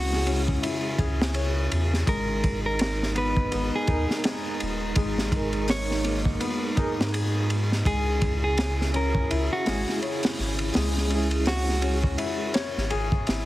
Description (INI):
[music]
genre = trip hop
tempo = 83 BPM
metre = 4/4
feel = swing 58% on 16ths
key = unclear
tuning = A4 = 439 Hz
[part]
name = clean electric guitar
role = melody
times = 0.0-12.0 s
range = F#4 to C#5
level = -31 LUFS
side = right 1 dB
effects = tape echo
[part]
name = barky reed electric piano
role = accompaniment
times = 0.0-12.5 s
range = G#3 to A#4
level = -33 LUFS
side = right 1 dB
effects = overdrive, tremolo, vintage 12-bit sampler grit, tape echo
[part]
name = warbly tape-like pad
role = sustained chords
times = 0.0-13.5 s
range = C#3 to A#5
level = -33 LUFS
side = right 2 dB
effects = chorus, built-in reverb
[part]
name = felt-muted upright piano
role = arpeggios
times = 0.0-13.5 s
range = G#3 to C#5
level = -32 LUFS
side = left 4 dB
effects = tape echo
[part]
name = soft dub sub bass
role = bass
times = 0.0-13.5 s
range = D#1 to G#2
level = -27 LUFS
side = equal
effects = none
[part]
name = crunchy breakbeat drum kit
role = drums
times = 0.1-13.5 s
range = hi-hat, kick drum, ride cymbal, snare drum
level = -27 LUFS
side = equal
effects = none
[sound]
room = studio ambience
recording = heavily compressed radio sound, multiband compression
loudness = -23 LUFS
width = side -16 dB against mid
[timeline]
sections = 0.0-13.5 A section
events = none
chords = 0.0 C#m; 2.1 G#madd9; 7.9 C#m